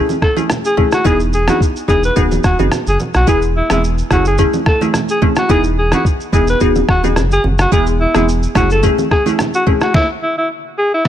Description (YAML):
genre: afrobeats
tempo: 108 BPM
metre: 4/4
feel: swing 55% on 16ths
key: unclear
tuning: A4 = 435 Hz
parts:
  - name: glassy wavetable pluck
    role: accompaniment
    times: 0.0-9.9 s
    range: G#3 to G#4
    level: -17 LUFS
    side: equal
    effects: chorus
  - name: lo-fi sampler-style drum kit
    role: drums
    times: 0.1-11.1 s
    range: kick drum, rim click, shaker, snare drum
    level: -16 LUFS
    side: equal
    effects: none
  - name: congas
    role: percussion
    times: 0.1-9.8 s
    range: none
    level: -23 LUFS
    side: right 3 dB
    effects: none
  - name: clear alto saxophone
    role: melody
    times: 0.2-11.0 s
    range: E4 to B4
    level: -17 LUFS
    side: equal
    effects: ping-pong delay
  - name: sub bass with octave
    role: bass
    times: 1.1-8.9 s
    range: D#1 to B1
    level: -17 LUFS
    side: equal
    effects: none
room: little or no reverb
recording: none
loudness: -12 LUFS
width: side -10 dB against mid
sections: 0.0-11.1 A section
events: stop 9.9-11.1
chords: 0.0 F#m7 (rootless); 1.1 Emaj7; 2.2 G#m7/D#; 3.3 E; 4.1 F#m7; 5.5 Emaj7; 6.6 G#m7/D#; 7.7 E; 8.6 F#m7; 9.9 N.C.